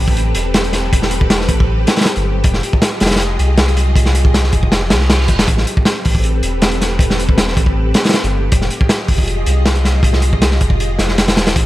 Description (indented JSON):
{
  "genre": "drum and bass, jungle",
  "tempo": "158 BPM",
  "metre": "4/4",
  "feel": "straight",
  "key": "unclear",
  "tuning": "A4 = 442 Hz",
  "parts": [
    { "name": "soft string machine", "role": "sustained chords", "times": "0.0-11.7 s", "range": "C4 to Eb5", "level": "-22 LUFS", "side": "equal", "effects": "ensemble chorus" },
    { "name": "soft dub sub bass", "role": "bass", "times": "0.0-11.7 s", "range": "Eb1 to C2", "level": "-16 LUFS", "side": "equal", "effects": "tube saturation" },
    { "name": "crunchy breakbeat drum kit", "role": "drums", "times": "0.1-11.7 s", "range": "hi-hat, kick drum, snare drum", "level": "-14 LUFS", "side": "equal", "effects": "none" },
    { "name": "reverse cymbal", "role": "sound effects", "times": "4.9-5.5 s", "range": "none", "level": "-26 LUFS", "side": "right 2 dB", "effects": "none" }
  ],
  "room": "studio reverb",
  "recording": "vinyl crackle",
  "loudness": "-12 LUFS",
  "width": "side -16 dB against mid",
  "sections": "0.0-11.7 A section",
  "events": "reverse cymbal 4.9-5.5",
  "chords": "0.0 Am9; 2.4 Fm9; 5.5 Am9; 8.5 Fm9"
}